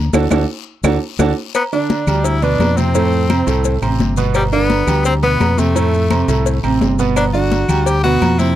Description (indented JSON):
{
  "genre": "latin, salsa",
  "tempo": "171 BPM",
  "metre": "4/4",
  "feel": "straight",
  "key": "G major",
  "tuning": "A4 = 440 Hz",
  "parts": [
    { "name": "fingered electric bass", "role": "bass", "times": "0.0-8.6 s", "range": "G1 to F2", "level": "-17 LUFS", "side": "left 1 dB", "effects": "none" },
    { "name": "bright grand piano", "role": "accompaniment", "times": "0.1-8.5 s", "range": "A2 to G5", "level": "-18 LUFS", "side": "right 6 dB", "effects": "none" },
    { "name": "claves", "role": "percussion", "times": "0.1-8.4 s", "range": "none", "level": "-28 LUFS", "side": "right 8 dB", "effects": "none" },
    { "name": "congas", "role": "percussion", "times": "0.1-8.6 s", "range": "none", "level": "-22 LUFS", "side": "left 4 dB", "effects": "none" },
    { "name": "cowbell", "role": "percussion", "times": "0.1-8.6 s", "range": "none", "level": "-26 LUFS", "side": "left 8 dB", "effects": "none" },
    { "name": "guiro", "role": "percussion", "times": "0.1-8.6 s", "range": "none", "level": "-35 LUFS", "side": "left 18 dB", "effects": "none" },
    { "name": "maracas", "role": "percussion", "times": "0.1-8.6 s", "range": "none", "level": "-31 LUFS", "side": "left 19 dB", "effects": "none" },
    { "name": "timbales and agogo bells", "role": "percussion", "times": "0.1-8.4 s", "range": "none", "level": "-25 LUFS", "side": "right 3 dB", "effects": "none" },
    { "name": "bright tenor saxophone", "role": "melody", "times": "1.6-8.6 s", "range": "G3 to G4", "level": "-19 LUFS", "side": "left 4 dB", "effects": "none" }
  ],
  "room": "light reverb",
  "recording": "dry, close 1970s-style studio recording",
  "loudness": "-13 LUFS",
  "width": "side -12 dB against mid",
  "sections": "0.0-1.5 A section; 1.5-8.6 B section",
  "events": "grand piano solo 0.0-1.5; drum fill 0.1-1.5; band accent 0.1-1.5",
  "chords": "0.1 D; 1.5 G; 2.9 F; 4.4 G; 5.8 F; 7.2 G"
}